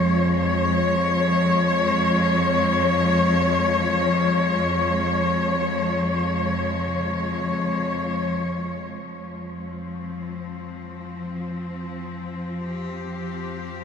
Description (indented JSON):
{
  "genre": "dark ambient drone",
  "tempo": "free time",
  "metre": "none",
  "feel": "none",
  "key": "F minor",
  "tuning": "A4 = 440 Hz",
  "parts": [
    { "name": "clear studio cello section", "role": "sustained chords", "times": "0.0-13.8 s", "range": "F2 to Db5", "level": "-22 LUFS", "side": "left 2 dB", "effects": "none" },
    { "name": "gamelan-type bronze metallophone", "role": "arpeggios", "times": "0.0-13.8 s", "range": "C3 to F4", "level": "-48 LUFS", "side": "right 1 dB", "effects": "none" },
    { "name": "deep rumbling drone", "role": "drone", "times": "0.0-13.8 s", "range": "F2 to F3", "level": "-26 LUFS", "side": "right 1 dB", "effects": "built-in reverb, wide subtle chorus" }
  ],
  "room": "wet huge ambient reverb, RT60 8.9 s",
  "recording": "none",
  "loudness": "-20 LUFS",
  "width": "side -7 dB against mid",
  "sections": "0.0-8.8 A section; 8.8-13.8 B section",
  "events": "none",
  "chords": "0.0 Db/F; 8.8 Fm",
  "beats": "free time"
}